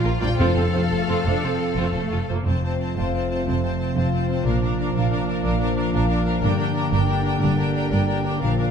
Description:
cinematic; 120 BPM (dotted quarters); 12/8; straight; F major; A4 = 440 Hz
rich symphonic violin section; melody; 0.0-8.7 s; F5 to A5; -34 LUFS; left 4 dB
warm symphonic violin section; second line; 0.0-8.7 s; C4 to D5; -31 LUFS; left 2 dB
warm symphonic viola section; accompaniment; 0.0-8.7 s; A3 to F4; -30 LUFS; right 2 dB
dark French horn section; sustained chords; 0.0-8.7 s; F3 to G4; -30 LUFS; left 5 dB
concert harp; arpeggios; 0.0-8.7 s; F2 to G5; -28 LUFS; left 8 dB
rich symphonic cello section; bass; 0.0-8.7 s; F2 to A4; -28 LUFS; right 3 dB
warm symphonic double bass section; bass; 0.0-8.7 s; F1 to Bb1; -25 LUFS; right 3 dB
warm trombone section; sustained chords; 0.2-8.7 s; D3 to D4; -27 LUFS; right 4 dB
timpani; percussion; 0.4-0.9 s; F2; -26 LUFS; left 1 dB
moderate scoring stage reverb, RT60 2.0 s; -19 LUFS; side -7 dB against mid
0.0-2.5 A section; 2.5-8.7 B section
0.4 F; 4.5 Bb; 6.4 Gm
| 0.40 0.92 1.44 1.96 | 2.47 2.97 3.47 3.96 | 4.46 4.96 5.45 5.94 | 6.43 6.92 7.42 7.92 | 8.43

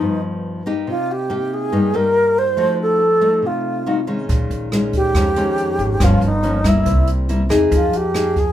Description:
bossa nova; 140 BPM; 4/4; straight; F minor; A4 = 439 Hz
reedy alto flute; melody; 0.0-8.5 s; Eb4 to C5; -18 LUFS; right 1 dB
nylon-string guitar; accompaniment; 0.0-8.5 s; F2 to Ab4; -20 LUFS; left 2 dB
upright bass; bass; 4.3-8.5 s; G1 to F2; -21 LUFS; equal
jazz brush drum kit; drums; 4.3-8.5 s; hi-hat, kick drum, rim click; -21 LUFS; right 1 dB
light reverb; minimal, uncompressed stereo recording; -15 LUFS; side -11 dB against mid
0.0-8.5 A section
0.0 G7alt; 0.9 Cm7; 2.6 F7b9; 4.3 Bbm7; 6.0 Gm7b5; 6.9 C7; 7.7 Fm11
0.02 0.44 | 0.87 1.30 1.73 2.16 | 2.58 3.01 3.44 3.87 | 4.30 4.72 5.15 5.58 | 6.01 6.43 6.86 7.29 | 7.72 8.15

